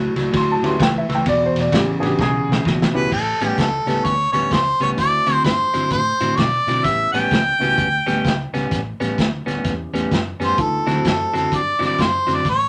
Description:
electric blues shuffle; 128 BPM; 4/4; swing 63% on 8ths; A mixolydian; A4 = 440 Hz
electric guitar at the edge of break-up; riff; 0.0-12.5 s; E2 to E4; -25 LUFS; equal
vintage muted fingered electric bass; bass; 0.0-12.7 s; E1 to B2; -29 LUFS; equal
crunchy breakbeat drum kit; drums; 0.2-12.6 s; crash cymbal, hi-hat, kick drum, ride cymbal, snare drum; -25 LUFS; equal
dark baby grand piano; accompaniment; 0.4-11.3 s; A2 to C6; -26 LUFS; equal
bright harmonica; melody; 2.9-12.7 s; A4 to G5; -21 LUFS; equal; overdrive
moderate studio reverb, RT60 0.5 s; -19 LUFS; mono
0.0-3.1 A section; 3.1-12.7 B section
drum fill 2.2-3.1
0.0 A7; 1.3 E7; 3.1 A9; 5.0 D9; 6.8 A9; 10.6 D9
0.33 0.79 | 1.25 1.72 2.18 2.65 | 3.11 3.58 4.04 4.51 | 4.97 5.44 5.91 6.38 | 6.84 7.31 7.78 8.24 | 8.71 9.18 9.64 10.11 | 10.58 11.05 11.51 11.98 | 12.45

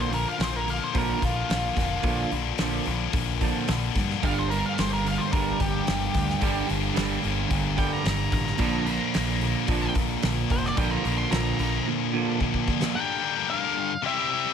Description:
quiet-loud alternative rock; 110 BPM; 4/4; straight; G minor; A4 = 444 Hz
octave-fuzz lead guitar; melody; 0.0-14.5 s; F4 to C6; -30 LUFS; equal; distortion
twangy electric guitar; arpeggios; 0.0-12.9 s; G2 to G3; -32 LUFS; right 8 dB; analog chorus, tape echo
high-gain distorted guitar; riff; 0.0-14.5 s; G2 to Bb4; -29 LUFS; left 14 dB; distortion
growling picked electric bass; bass; 0.0-11.8 s; F1 to G2; -30 LUFS; equal; overdrive
loose indie drum kit; drums; 0.1-12.9 s; hi-hat, kick drum, snare drum; -30 LUFS; equal
sludgy distorted guitar; riff; 4.2-12.9 s; G2 to Bb3; -30 LUFS; right 10 dB; overdrive
light reverb; -23 LUFS; side -8 dB against mid
0.0-13.0 A section; 13.0-14.5 B section
lead electric guitar solo 0.0-13.0; drum fill 12.4-13.0
0.0 Bb; 4.2 Gm; 8.6 Bb; 13.0 Gm
0.41 0.95 1.50 | 2.05 2.60 3.15 3.69 | 4.24 4.79 5.33 5.88 | 6.42 6.97 7.51 8.06 | 8.61 9.15 9.69 10.24 | 10.78 11.33 11.87 12.41 | 12.96 13.50 14.04

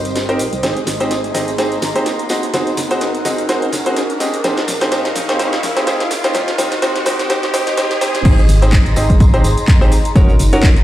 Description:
piano house; 126 BPM; 4/4; swing 56% on 16ths; Ab major; A4 = 440 Hz
organ-like FM bass; bass; 0.0-10.8 s; Gb1 to C2; -19 LUFS; equal; sidechain pumping
riser; sound effects; 0.0-8.3 s; -25 LUFS; equal
airy breathy pad; texture; 0.0-10.8 s; C4 to Db6; -22 LUFS; right 1 dB; chorus, sidechain pumping
house drum kit; drums; 0.1-10.8 s; crash cymbal, handclaps, hi-hat, shaker, snare drum; -23 LUFS; equal; overdrive, high-pass filter on snare, high-pass filter on hats, high-pass filter on perc, high-pass filter on cymbals, high-pass filter on room
tambourine; percussion; 0.1-10.8 s; -32 LUFS; right 1 dB
bright grand piano; riff; 0.3-10.6 s; C4 to Eb5; -18 LUFS; right 1 dB; sidechain pumping, low-pass filter, digital delay
electronic kick drum; drums; 8.3-10.7 s; -11 LUFS; equal; overdrive
light reverb; played on a big sound system in a bare room, stone room reverb, high-pass filter; -13 LUFS; side -14 dB against mid
0.0-8.3 A section; 8.3-10.8 B section
build-up 0.0-8.3; drum fill 0.0-8.3; riser 0.0-8.3; drop 8.3-10.8
0.0 Cm7; 0.6 Abmaj7; 2.3 Ebm/Gb; 4.2 Bbm7; 6.1 Cm7; 8.3 Abmaj7; 9.9 Ebm7/Gb
0.16 | 0.63 1.11 1.58 2.06 | 2.54 3.01 3.49 3.96 | 4.44 4.92 5.39 5.87 | 6.35 6.82 7.30 7.78 | 8.25 8.73 9.20 9.68 | 10.16 10.63

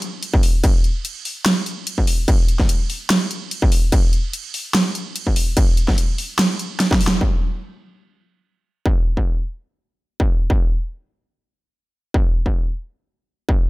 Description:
dubstep; 146 BPM; 4/4; swing 54% on 16ths, half-time
dubstep drum kit; drums; 0.0-7.2 s; crash cymbal, hi-hat, snare drum; -21 LUFS; right 1 dB
electronic kick drum; drums; 0.3-13.6 s; -16 LUFS; equal; distortion
digital ambience; -17 LUFS; side -20 dB against mid
0.0-7.2 A section; 7.2-13.7 B section
drop 0.0-7.2; drum fill 6.8-7.2; band accent 7.1
0.23 | 0.64 1.05 1.46 1.87 | 2.28 2.69 3.10 3.51 | 3.92 4.33 4.75 5.16 | 5.57 5.98 6.39 6.80 | 7.21 7.62 8.03 8.45 | 8.86 9.27 9.68 10.09 | 10.50 10.91 11.32 11.73 | 12.14 12.55 12.96 13.38

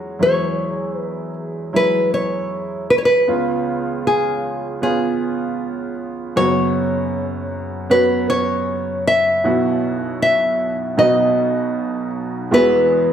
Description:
pop; 78 BPM; 4/4; straight; E major; A4 = 440 Hz
clear upright piano; accompaniment; 0.0-13.1 s; F#1 to F#4; -21 LUFS; right 2 dB
nylon-string guitar; melody; 0.2-13.1 s; B3 to E5; -17 LUFS; equal
wet large studio reverb, RT60 1.2 s; band playing live in one room; -16 LUFS; side -9 dB against mid
0.2-12.5 A section
0.2 Eadd9; 3.3 C#7; 6.4 F#sus4; 9.4 Bsus4; 11.0 B; 12.5 Eadd9
| 0.21 0.98 1.75 2.52 | 3.29 4.06 4.83 5.59 | 6.36 7.13 7.90 8.67 | 9.44 10.21 10.98 11.75 | 12.52

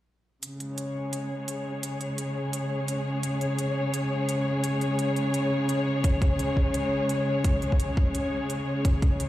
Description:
half-time drum and bass; 171 BPM; 4/4; swing 58% on 16ths, half-time; A4 = 440 Hz
muted studio string section; sustained chords; 0.4-9.3 s; C#3 to C#5; -26 LUFS; left 1 dB; sidechain pumping, low-pass filter
electronic hi-hat; drums; 0.4-9.3 s; -37 LUFS; right 3 dB
electronic kick drum; drums; 6.0-9.1 s; -22 LUFS; equal
moderate echo chamber reverb, RT60 1.8 s; played on a big sound system in a bare room, large studio reverb; -25 LUFS; side -14 dB against mid
0.4-9.3 A section
0.4 C#5
| 0.43 0.78 1.13 1.48 | 1.83 2.18 2.53 2.88 | 3.23 3.59 3.94 4.29 | 4.64 4.99 5.34 5.69 | 6.04 6.39 6.74 7.09 | 7.45 7.80 8.15 8.50 | 8.85 9.20

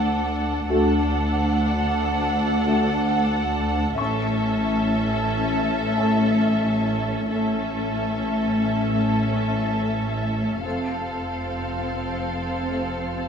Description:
cinematic; 90 BPM; 5/4; straight; A4 = 439 Hz
muted studio violin section; melody; 0.0-13.3 s; E5 to F#5; -29 LUFS; equal
muted studio violin section; second line; 0.0-13.3 s; A4; -30 LUFS; right 1 dB
muted studio viola section; accompaniment; 0.0-13.3 s; C4 to D4; -28 LUFS; left 2 dB
muted studio cello section; bass; 0.0-13.3 s; D2 to A2; -25 LUFS; left 1 dB
muted studio double bass section; bass; 0.0-13.3 s; F1 to D2; -29 LUFS; right 2 dB
mellow French horn section; sustained chords; 0.7-12.9 s; A3 to F#4; -27 LUFS; equal
felt-muted upright piano; texture; 4.0-10.7 s; A5 to C#6; -36 LUFS; left 2 dB
wet stone room reverb, RT60 1.0 s; minimal, uncompressed stereo recording; -20 LUFS; side -7 dB against mid
0.0-13.3 A section
0.0 D; 4.0 A; 10.6 F
0.02 | 0.68 1.35 2.01 2.67 3.33 | 3.99 4.65 5.31 5.97 6.64 | 7.31 7.97 8.64 9.30 9.98 | 10.65 11.32 11.99 12.66

